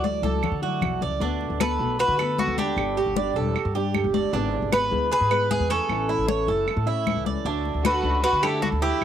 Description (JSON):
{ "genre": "latin, Cuban son and guajira", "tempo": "154 BPM", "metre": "4/4", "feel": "straight", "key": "D major", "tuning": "A4 = 440 Hz", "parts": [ { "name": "Cuban tres", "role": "melody", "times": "0.0-9.0 s", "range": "F#4 to D5", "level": "-26 LUFS", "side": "left 2 dB", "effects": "plate reverb, tape echo" }, { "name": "nylon-string guitar", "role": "accompaniment", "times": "0.0-9.0 s", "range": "B2 to G#4", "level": "-32 LUFS", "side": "left 8 dB", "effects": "cassette tape" }, { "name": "Cuban tres", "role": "arpeggios", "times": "0.0-9.0 s", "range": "C#4 to D5", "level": "-27 LUFS", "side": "right 8 dB", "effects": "cassette tape, plate reverb, tape echo" }, { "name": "upright bass", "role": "bass", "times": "0.0-9.0 s", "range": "E1 to D3", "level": "-28 LUFS", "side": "equal", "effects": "none" }, { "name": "congas", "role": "percussion", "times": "0.0-9.0 s", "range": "none", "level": "-29 LUFS", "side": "left 9 dB", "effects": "none" }, { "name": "claves", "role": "percussion", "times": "0.4-9.0 s", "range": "none", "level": "-31 LUFS", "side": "right 12 dB", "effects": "none" }, { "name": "warm studio violin section", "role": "second line", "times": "7.8-9.0 s", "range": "D4 to F#4", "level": "-30 LUFS", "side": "right 2 dB", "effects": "cassette tape, plate reverb" } ], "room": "moderate booth ambience, RT60 0.2 s", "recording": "home recording on cassette", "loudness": "-21 LUFS", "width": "side -9 dB against mid", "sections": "0.0-1.2 A section; 1.2-9.0 A section", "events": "drum fill 0.0-1.2", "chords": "0.0 Dadd9; 1.2 D6; 2.8 Gsus2; 4.3 E7/G#; 5.9 A; 7.5 D" }